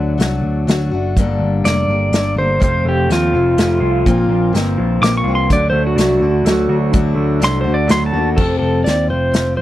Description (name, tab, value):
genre	folk rock and heartland rock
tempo	125 BPM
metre	3/4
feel	straight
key	unclear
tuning	A4 = 440 Hz
part	picked steel-string acoustic guitar	accompaniment	0.0-9.6 s	F2 to A4	-21 LUFS	left 4 dB	none
part	picked electric bass	bass	0.0-9.6 s	F1 to Eb2	-18 LUFS	equal	none
part	unplugged drum kit	drums	0.2-9.5 s	crash cymbal, hi-hat, kick drum, snare drum	-17 LUFS	equal	none
part	pedal steel guitar	melody	1.7-9.6 s	F4 to D6	-17 LUFS	right 1 dB	none
part	electric guitar through a small old amp	riff	2.6-8.4 s	F2 to F#4	-22 LUFS	right 1 dB	spring reverb
room	little or no reverb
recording	dry, close 1970s-style studio recording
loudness	-13 LUFS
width	side -14 dB against mid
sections	0.0-8.4 A section; 8.4-9.6 B section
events	pedal steel guitar solo 0.0-8.4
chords	0.0 D; 1.2 Gmadd9; 2.6 F; 4.1 Bbsus2; 5.5 D; 8.4 F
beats	0.19 0.67 | 1.16 1.64 2.12 | 2.60 3.09 3.57 | 4.05 4.53 5.01 | 5.50 5.97 6.46 | 6.93 7.41 7.89 | 8.37 8.85 9.33